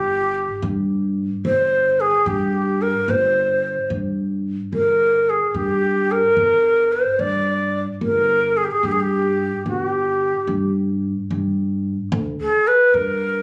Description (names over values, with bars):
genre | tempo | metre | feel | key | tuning
Arabic maqam ensemble | 73 BPM (dotted quarters) | 6/8 | straight | G maqam kurd | A4 = 439 Hz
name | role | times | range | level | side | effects
breathy reedy ney | melody | 0.0-13.4 s | G4 to D5 | -20 LUFS | equal | none
upright bass | bass | 0.0-13.4 s | G1 to G2 | -26 LUFS | equal | none
room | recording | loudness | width
light reverb | recorded on a phone in the room, club reverb, compression | -20 LUFS | mono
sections
0.0-11.3 A section; 11.3-13.4 B section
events
none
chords
none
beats
0.62 | 1.44 2.26 | 3.08 3.90 | 4.72 5.55 | 6.37 7.19 | 8.01 8.83 | 9.65 10.47 | 11.29 12.12 | 12.94